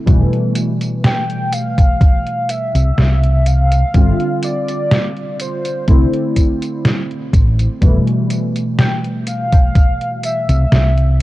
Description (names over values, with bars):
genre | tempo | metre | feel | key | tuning
vaporwave | 62 BPM | 4/4 | straight | F lydian | A4 = 441 Hz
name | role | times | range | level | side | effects
warbly lo-fi synth keys | accompaniment | 0.0-11.2 s | B2 to F4 | -19 LUFS | equal | lush chorus, analog delay
fingered electric bass | bass | 0.1-11.2 s | F1 to C2 | -13 LUFS | equal | none
detuned 8-bit digital drum machine | drums | 0.1-11.2 s | hi-hat, snare drum, tambourine | -18 LUFS | equal | none
electronic kick drum | drums | 0.1-10.0 s | none | -11 LUFS | equal | none
warm velvety synth lead | melody | 1.0-11.2 s | C5 to G5 | -22 LUFS | equal | chorus, tape echo
room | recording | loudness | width
little or no reverb | dark, warm production, cassette tape | -13 LUFS | side -17 dB against mid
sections
0.0-11.2 A section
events
none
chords
0.1 Fmaj9#11; 3.9 G7sus4; 5.9 C69; 7.8 Fmaj9#11